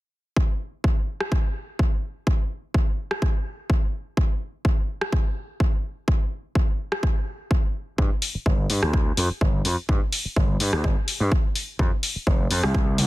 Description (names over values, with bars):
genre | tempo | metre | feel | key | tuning
filtered disco house | 126 BPM | 4/4 | swing 54% on 16ths | unclear | A4 = 445 Hz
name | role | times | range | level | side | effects
electronic kick drum | drums | 0.4-12.8 s | none | -22 LUFS | equal | overdrive
punchy analog drum machine | drums | 1.2-13.1 s | hi-hat, rim click | -27 LUFS | left 1 dB | sidechain pumping on hats
gritty slap bass | bass | 8.0-13.1 s | F1 to G2 | -24 LUFS | equal | overdrive, sidechain pumping, low-pass filter
room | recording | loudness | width
little or no reverb | none | -22 LUFS | side -18 dB against mid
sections
0.4-13.1 A section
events
none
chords
none